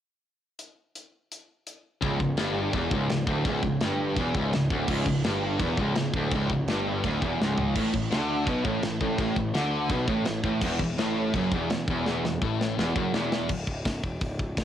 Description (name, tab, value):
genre	heavy metal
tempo	168 BPM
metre	4/4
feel	straight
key	C# phrygian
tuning	A4 = 440 Hz
part	tight metal drum kit	drums	0.6-14.6 s	china cymbal, crash cymbal, hi-hat, kick drum, snare drum, toms	-30 LUFS	equal	cassette tape
part	distorted electric guitar	riff	2.0-13.5 s	C#2 to D3	-29 LUFS	right 6 dB	distortion, cassette tape
part	high-gain distorted guitar	riff	2.0-13.5 s	C#2 to D3	-30 LUFS	left 8 dB	distortion, cassette tape
part	fuzz picked electric bass	bass	2.0-14.6 s	C#1 to D2	-32 LUFS	equal	overdrive
room	little or no reverb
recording	home recording on cassette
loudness	-24 LUFS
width	side -10 dB against mid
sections	0.6-2.0 A section; 2.0-13.5 B section; 13.5-14.6 C section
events	drum fill 7.4-7.8, 12.1-13.5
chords	0.6 N.C.; 2.0 C#m; 7.8 Asus24; 10.6 Esus24; 13.5 C#m